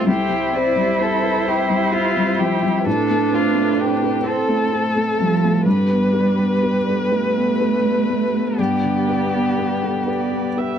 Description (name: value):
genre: neoclassical piano and strings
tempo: 42 BPM (dotted quarters)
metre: 6/8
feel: uneven beats, rubato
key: unclear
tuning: A4 = 439 Hz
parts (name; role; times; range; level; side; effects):
- muted violin; melody; 0.0-10.8 s; F4 to C5; -22 LUFS; left 3 dB; none
- muted cello; second line; 0.0-10.8 s; F3 to E4; -21 LUFS; right 5 dB; none
- felt-muted upright piano; accompaniment; 0.0-10.8 s; C2 to C5; -21 LUFS; left 4 dB; none
- muted viola; accompaniment; 0.0-10.8 s; A4 to E5; -29 LUFS; right 5 dB; none
- dark analog pad; sustained chords; 0.0-10.8 s; A3 to D5; -29 LUFS; right 3 dB; chorus
room: light reverb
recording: dark, warm production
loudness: -16 LUFS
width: side -8 dB against mid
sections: 0.0-10.8 A section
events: none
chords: 0.1 C; 2.9 Am; 5.7 G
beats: | 0.07 1.47 | 2.86 4.25 | 5.66 7.10 | 8.58 10.07